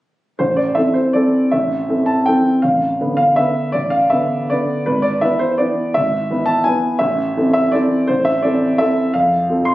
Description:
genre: classical, piano waltz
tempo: 155-181 BPM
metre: 3/4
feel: rubato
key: A minor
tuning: A4 = 440 Hz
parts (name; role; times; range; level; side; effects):
- warm grand piano; solo; 0.4-9.7 s; G#1 to C6; -14 LUFS; equal; none
room: moderate large studio reverb, RT60 1.3 s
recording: recorded on a phone in the room, studio reverb, compression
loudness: -14 LUFS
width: side -16 dB against mid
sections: 0.4-9.7 A section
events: none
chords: 0.4 Am; 2.6 Bm7b5/A; 4.9 E/G#; 7.0 Am; 9.1 F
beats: | 0.39 0.77 1.15 | 1.52 1.89 2.27 | 2.63 2.99 3.37 | 3.74 4.11 4.49 | 4.86 5.23 5.60 | 5.96 6.30 6.66 | 7.01 7.37 7.73 | 8.10 8.44 8.80 | 9.14 9.49

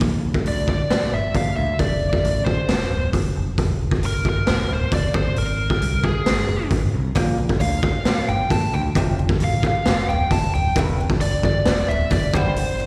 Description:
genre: quiet-loud alternative rock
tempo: 134 BPM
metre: 4/4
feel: straight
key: unclear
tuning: A4 = 440 Hz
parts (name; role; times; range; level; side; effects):
- overdriven picked electric bass; bass; 0.0-12.9 s; D1 to D2; -25 LUFS; equal; none
- raw garage drum kit; drums; 0.0-12.7 s; hi-hat, kick drum, snare drum; -24 LUFS; equal; none
- biting lead guitar; melody; 0.5-12.9 s; Ab4 to A5; -27 LUFS; equal; overdrive, slapback echo, digital delay
- picked old ladder-braced acoustic guitar; arpeggios; 7.2-12.9 s; C2 to Bb3; -32 LUFS; equal; slapback echo
room: little or no reverb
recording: live gig heard through the venue's PA, recital hall reverb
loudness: -21 LUFS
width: mono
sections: 0.0-12.9 A section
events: none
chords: 0.0 Bb; 1.8 F; 3.6 C7 (rootless); 5.2 Ab; 7.2 Bb; 9.0 F; 10.8 Cadd9/E; 12.3 Gsus4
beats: | 0.02 0.47 0.91 1.36 | 1.80 2.25 2.70 3.14 | 3.59 4.04 4.48 4.93 | 5.38 5.82 6.27 6.72 | 7.17 7.61 8.06 8.51 | 8.96 9.41 9.86 10.31 | 10.76 11.21 11.66 12.11 | 12.56

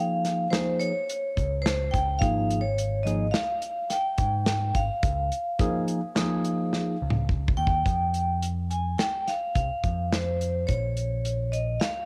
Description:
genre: progressive instrumental, band music in an uneven meter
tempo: 106 BPM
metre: 5/4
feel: straight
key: F minor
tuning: A4 = 438 Hz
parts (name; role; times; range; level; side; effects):
- vibraphone with hard mallets; melody; 0.0-12.1 s; C5 to Ab5; -31 LUFS; equal; cassette tape
- bell-like tine electric piano; accompaniment; 0.0-7.0 s; F3 to Ab4; -30 LUFS; equal; phaser
- natural country drum kit; drums; 0.2-11.9 s; hi-hat, kick drum, snare drum, toms; -30 LUFS; equal; cassette tape
- picked electric bass; bass; 1.4-11.8 s; Ab1 to Ab2; -31 LUFS; equal; none
room: moderate spring reverb, RT60 1.9 s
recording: home recording on cassette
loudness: -27 LUFS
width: mono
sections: 0.0-7.9 A section; 7.9-12.1 B section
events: drum fill 6.7-7.9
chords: 0.0 Db; 2.2 Ab5; 5.0 Db; 7.9 Fsus2; 10.7 Bbm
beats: 0.52 1.08 1.65 | 2.21 2.78 3.34 3.91 4.47 | 5.04 5.60 6.16 6.73 7.29 | 7.86 8.43 8.99 9.56 10.12 | 10.69 11.25 11.81

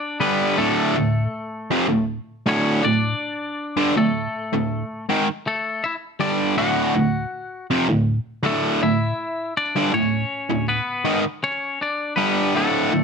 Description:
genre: rock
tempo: 80 BPM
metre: 4/4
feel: straight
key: D major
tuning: A4 = 441 Hz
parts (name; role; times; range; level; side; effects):
- twangy electric guitar; melody; 0.0-13.0 s; A3 to F#5; -24 LUFS; left 2 dB; slapback echo, plate reverb
- overdriven electric guitar; riff; 0.2-13.0 s; D2 to G3; -19 LUFS; right 1 dB; none
room: moderate studio reverb, RT60 0.7 s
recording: none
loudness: -19 LUFS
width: side -6 dB against mid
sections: 0.0-13.0 A section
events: none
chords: 0.0 D5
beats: 0.21 0.96 1.71 | 2.46 3.21 3.96 4.71 | 5.45 6.20 6.95 7.70 | 8.44 9.19 9.94 10.69 | 11.43 12.18 12.93

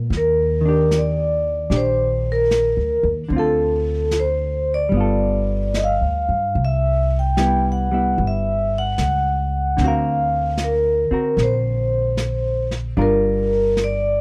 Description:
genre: jazz ballad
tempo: 75 BPM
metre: 4/4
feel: swing 67% on 8ths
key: unclear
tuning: A4 = 440 Hz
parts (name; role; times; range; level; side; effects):
- hollow-body jazz guitar; accompaniment; 0.0-14.2 s; D3 to A#4; -27 LUFS; equal; none
- upright bass; bass; 0.0-14.2 s; G1 to G2; -25 LUFS; equal; none
- jazz brush drum kit; drums; 0.1-14.2 s; brushed snare drum, hi-hat, snare drum; -32 LUFS; equal; none
- vibraphone with medium mallets; melody; 0.2-14.2 s; A4 to G5; -22 LUFS; equal; none
room: small room ambience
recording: dry, close 1970s-style studio recording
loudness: -20 LUFS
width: mono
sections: 0.0-14.2 A section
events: none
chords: 0.1 Ebmaj7; 3.3 Dm7; 4.9 G9; 6.6 Cmaj7; 9.8 D7alt; 13.0 Gm7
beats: | 0.11 0.91 1.71 2.51 | 3.31 4.12 4.92 5.74 | 6.56 7.37 8.18 8.98 | 9.78 10.58 11.38 12.17 | 12.97 13.77

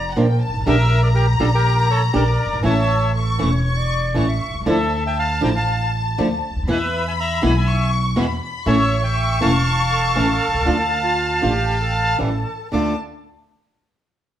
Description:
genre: tango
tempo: 120 BPM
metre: 4/4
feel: rubato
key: D harmonic minor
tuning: A4 = 445 Hz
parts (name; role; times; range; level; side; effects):
- bright concert flute; second line; 0.0-4.5, 9.9-13.0 s; F4 to E5; -28 LUFS; right 1 dB; none
- dark studio violin section; second line; 0.0-13.0 s; F#5 to C#6; -25 LUFS; left 3 dB; none
- upright bass; bass; 0.0-12.9 s; E1 to E2; -20 LUFS; equal; none
- flamenco guitar; accompaniment; 0.2-12.9 s; B2 to G4; -21 LUFS; equal; none
- bandoneon; melody; 0.7-13.0 s; F4 to D6; -21 LUFS; right 1 dB; none
room: wet studio reverb, RT60 0.9 s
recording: heard from further back in the room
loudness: -16 LUFS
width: side -11 dB against mid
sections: 0.0-12.7 A section; 12.7-14.4 B section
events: none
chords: 0.0 Bb; 0.7 Gm/Bb; 2.6 A; 4.7 Dmadd9; 6.7 E; 8.7 A; 10.7 Dm; 12.2 A7; 12.7 Dm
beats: 0.16 | 0.66 1.15 1.64 2.14 | 2.65 3.15 3.65 4.16 | 4.67 5.18 5.68 6.18 | 6.68 7.18 7.67 8.17 | 8.67 9.17 9.67 10.17 | 10.67 11.18 11.69 12.21 | 12.73

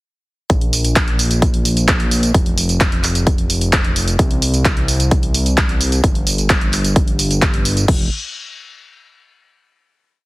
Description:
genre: EDM, festival progressive house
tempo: 130 BPM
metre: 4/4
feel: straight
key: unclear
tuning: A4 = 439 Hz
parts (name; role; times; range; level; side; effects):
- fat analog bass; bass; 0.5-8.1 s; F1 to C2; -18 LUFS; equal; sidechain pumping
- big-room dance drum kit; drums; 0.5-8.0 s; crash cymbal, handclaps, hi-hat, tambourine; -19 LUFS; equal; none
- electronic kick drum; drums; 0.5-8.0 s; none; -16 LUFS; equal; overdrive
room: little or no reverb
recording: heavily compressed radio sound, multiband compression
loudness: -13 LUFS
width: side -21 dB against mid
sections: 0.5-7.9 drop; 7.9-9.7 final note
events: drop 0.5-7.9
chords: none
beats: | 0.50 0.96 1.42 1.88 | 2.35 2.81 3.27 3.73 | 4.19 4.65 5.11 5.58 | 6.04 6.50 6.96 7.42 | 7.88

